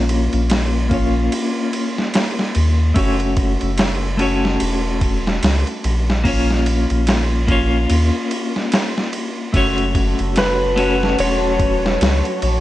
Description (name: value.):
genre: trip hop.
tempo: 73 BPM.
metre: 4/4.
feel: swing 58% on 16ths.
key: unclear.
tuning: A4 = 441 Hz.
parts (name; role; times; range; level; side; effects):
clean electric guitar; accompaniment; 0.0-12.6 s; A3 to C#5; -20 LUFS; left 2 dB; tremolo, vintage 12-bit sampler grit, low-pass filter, tape echo.
soft dub sub bass; bass; 0.0-12.6 s; E1 to D#2; -19 LUFS; equal; none.
dusty soul sampler-style drum kit; drums; 0.1-12.6 s; hi-hat, kick drum, ride cymbal, snare drum; -21 LUFS; equal; overdrive, studio reverb.
string machine, cellos; sustained chords; 9.5-12.6 s; F#4 to A5; -24 LUFS; equal; phaser, ensemble chorus.
clean lap steel guitar; melody; 10.4-12.6 s; B4 to C#5; -20 LUFS; left 1 dB; tape echo.
room: light reverb.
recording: vinyl crackle, nothing above 10.9 kHz.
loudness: -15 LUFS.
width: side -15 dB against mid.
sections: 0.0-12.6 A section.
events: filter sweep on clean electric guitar 0.0-12.6.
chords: 0.0 A#m; 3.0 F#m; 6.3 A#m; 9.5 F#m.